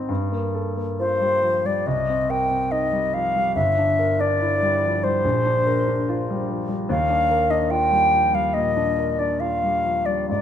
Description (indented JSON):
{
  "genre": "classical, impressionist duo for flute and grand piano",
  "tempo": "71 BPM",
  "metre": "4/4",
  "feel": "uneven beats, rubato",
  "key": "unclear",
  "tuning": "A4 = 440 Hz",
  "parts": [
    { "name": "warm concert grand piano", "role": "accompaniment", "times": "0.0-10.4 s", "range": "G1 to Bb4", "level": "-24 LUFS", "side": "equal", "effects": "none" },
    { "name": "concert flute", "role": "melody", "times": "1.0-10.4 s", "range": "C5 to G5", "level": "-20 LUFS", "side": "left 1 dB", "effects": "none" }
  ],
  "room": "moderate recital hall reverb, RT60 1.6 s",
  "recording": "minimal, uncompressed stereo recording",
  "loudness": "-19 LUFS",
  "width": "side -9 dB against mid",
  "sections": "0.1-10.4 A section",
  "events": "none",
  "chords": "0.1 Gm9; 1.9 Cm7; 3.6 Gm6; 5.2 Bb69; 6.9 Ebmaj9",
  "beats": "| 0.09 0.99 1.86 2.71 | 3.56 4.40 5.24 6.07 | 6.89 7.70 8.54 9.40 | 10.29"
}